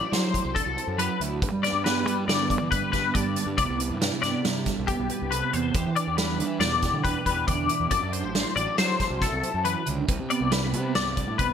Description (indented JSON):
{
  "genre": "math rock and midwest emo",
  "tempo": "138 BPM",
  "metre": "5/4",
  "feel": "straight",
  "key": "C lydian",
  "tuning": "A4 = 440 Hz",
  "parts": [
    { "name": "twelve-string electric guitar", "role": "accompaniment", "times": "0.0-11.5 s", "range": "G2 to D5", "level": "-30 LUFS", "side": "right 6 dB", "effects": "ensemble chorus" },
    { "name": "twelve-string electric guitar", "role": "arpeggios", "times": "0.0-11.5 s", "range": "G4 to D5", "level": "-27 LUFS", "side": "left 7 dB", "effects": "ensemble chorus" },
    { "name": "fuzz fingered electric bass", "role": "bass", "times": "0.1-11.5 s", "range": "A1 to G3", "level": "-31 LUFS", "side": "equal", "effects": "overdrive" },
    { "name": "loose indie drum kit", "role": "drums", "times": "0.1-11.5 s", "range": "hi-hat, kick drum, snare drum", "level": "-28 LUFS", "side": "right 1 dB", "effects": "gated reverb" }
  ],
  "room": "light reverb, small room ambience",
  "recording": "bright 1980s-style digital production",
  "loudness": "-23 LUFS",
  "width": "side -8 dB against mid",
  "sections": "0.0-11.5 A section",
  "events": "none",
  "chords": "0.0 D9; 1.4 G; 3.6 Cmaj7; 5.7 Em7; 7.9 D9; 10.1 Csus2",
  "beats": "0.12 0.55 0.98 | 1.42 1.85 2.28 2.71 3.15 | 3.58 4.01 4.44 4.88 5.31 | 5.74 6.18 6.61 7.04 7.48 | 7.91 8.35 8.78 9.21 9.65 | 10.09 10.52 10.96 11.39"
}